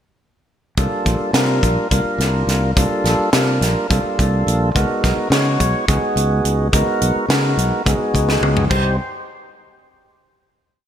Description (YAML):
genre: electric jazz fusion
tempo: 212 BPM (eighths)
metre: 7/8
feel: straight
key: unclear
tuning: A4 = 440 Hz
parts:
  - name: tonewheel organ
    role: accompaniment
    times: 0.8-9.0 s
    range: G3 to Db5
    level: -19 LUFS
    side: equal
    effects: slow rotary speaker
  - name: fingered electric bass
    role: bass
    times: 0.8-9.0 s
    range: Bb1 to Db3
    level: -18 LUFS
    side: equal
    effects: none
  - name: tight funk drum kit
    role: drums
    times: 0.8-8.8 s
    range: crash cymbal, hi-hat, kick drum, snare drum, toms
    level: -20 LUFS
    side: equal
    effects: none
room: moderate lush hall reverb, RT60 2.0 s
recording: bright 1980s-style digital production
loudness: -15 LUFS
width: side -9 dB against mid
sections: 0.8-8.7 groove; 8.7-10.7 final chord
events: drum fill 8.3-8.7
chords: 0.8 C13sus4; 4.8 Db13sus4; 8.7 Cm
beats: | 0.78 1.07 1.35 1.64 1.92 2.20 2.49 | 2.77 3.06 3.34 3.62 3.91 4.19 4.47 | 4.76 5.04 5.32 5.61 5.89 6.17 6.45 | 6.73 7.02 7.30 7.58 7.86 8.14 8.42 | 8.71